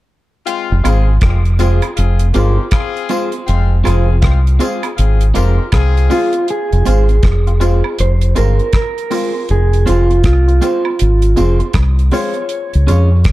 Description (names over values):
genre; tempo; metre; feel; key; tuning
roots reggae; 80 BPM; 4/4; swing 62% on 16ths; F minor; A4 = 439 Hz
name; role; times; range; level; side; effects
warm horn section; second line; 0.5-6.3 s; Ab3 to Bb4; -23 LUFS; left 9 dB; tape echo
damped 70s drum kit; drums; 0.5-13.3 s; hi-hat, kick drum, rim click; -17 LUFS; equal; none
deep dub fingered electric bass; bass; 0.7-13.3 s; F1 to F2; -11 LUFS; equal; none
electric guitar at the edge of break-up; accompaniment; 0.8-13.1 s; C4 to Db5; -23 LUFS; right 5 dB; tape echo
filtered dub chord stab; stabs; 0.8-13.1 s; Ab3 to F4; -23 LUFS; left 4 dB; chorus
tambourine and woodblock; percussion; 0.8-13.1 s; none; -30 LUFS; right 7 dB; none
mellow electric guitar; melody; 6.1-13.3 s; F4 to Db5; -18 LUFS; right 2 dB; tape echo
room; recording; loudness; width
light reverb, studio reverb; dark, warm production; -11 LUFS; side -17 dB against mid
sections
0.5-6.5 A section; 6.5-13.3 B section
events
none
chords
0.5 Fm; 12.5 Db